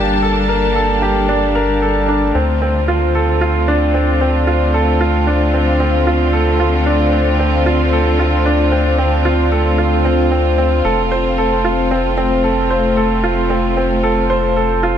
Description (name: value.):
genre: piano and strings electronica.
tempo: 113 BPM.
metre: 4/4.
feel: straight.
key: D minor.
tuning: A4 = 439 Hz.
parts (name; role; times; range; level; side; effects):
warm studio string section; sustained chords; 0.0-15.0 s; D3 to A5; -18 LUFS; left 2 dB; none.
clear upright piano; riff; 0.0-15.0 s; C4 to C5; -16 LUFS; right 1 dB; tape echo.
round analog bass; bass; 0.0-15.0 s; F1 to D2; -18 LUFS; equal; none.
room: moderate huge ambient reverb, RT60 7.2 s.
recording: none.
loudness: -12 LUFS.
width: side -9 dB against mid.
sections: 0.0-15.0 A section.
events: none.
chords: 0.0 Gmadd9; 2.4 Dm7; 10.8 F.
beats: | 0.23 0.76 1.29 1.82 | 2.35 2.88 3.41 3.94 | 4.47 5.01 5.54 6.07 | 6.60 7.13 7.66 8.19 | 8.72 9.25 9.79 10.32 | 10.85 11.38 11.91 12.44 | 12.97 13.50 14.03 14.56.